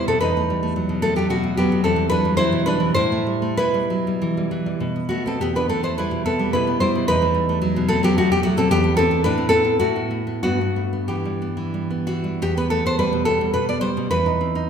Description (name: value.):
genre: romantic piece for solo classical guitar.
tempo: 88-113 BPM.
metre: 3/4.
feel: rubato.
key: E minor.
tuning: A4 = 441 Hz.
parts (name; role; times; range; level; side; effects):
nylon-string guitar; solo; 0.0-14.7 s; E2 to D5; -18 LUFS; equal; none.
room: wet recital hall reverb, RT60 1.3 s.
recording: recorded in a church or concert hall.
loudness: -18 LUFS.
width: side -7 dB against mid.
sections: 0.0-12.4 A section; 12.4-14.7 B section.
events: none.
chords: 0.2 B7/E; 1.8 Em; 3.0 Am; 3.6 Em/B; 4.8 B7sus4; 5.4 Em; 7.1 B7/E; 8.7 Em; 9.2 Am; 9.8 B5/A; 10.4 Em/G; 12.4 Em; 14.1 B/E.